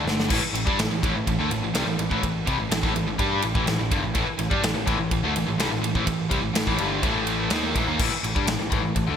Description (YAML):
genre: hard rock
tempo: 125 BPM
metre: 4/4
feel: straight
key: unclear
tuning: A4 = 440 Hz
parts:
  - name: overdriven semi-hollow guitar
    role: riff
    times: 0.0-9.2 s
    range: G2 to G4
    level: -28 LUFS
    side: left 8 dB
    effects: none
  - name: overdriven semi-hollow guitar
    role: riff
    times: 0.0-9.2 s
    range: G2 to G4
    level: -29 LUFS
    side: right 1 dB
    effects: spring reverb
  - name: sludgy distorted guitar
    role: riff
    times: 0.0-8.0 s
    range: G2 to G4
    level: -29 LUFS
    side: right 8 dB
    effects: overdrive
  - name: picked electric bass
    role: bass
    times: 0.0-9.2 s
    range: G1 to G2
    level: -30 LUFS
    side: equal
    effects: none
  - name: big rock drum kit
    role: drums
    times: 0.1-9.1 s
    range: crash cymbal, kick drum, ride cymbal, snare drum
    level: -26 LUFS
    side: equal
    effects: gated reverb
room: moderate lush hall reverb, RT60 1.9 s, small room ambience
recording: bright 1980s-style digital production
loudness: -21 LUFS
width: side -8 dB against mid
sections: 0.3-8.0 A section; 8.0-9.2 A section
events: drum fill 0.0-0.3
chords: 0.3 A5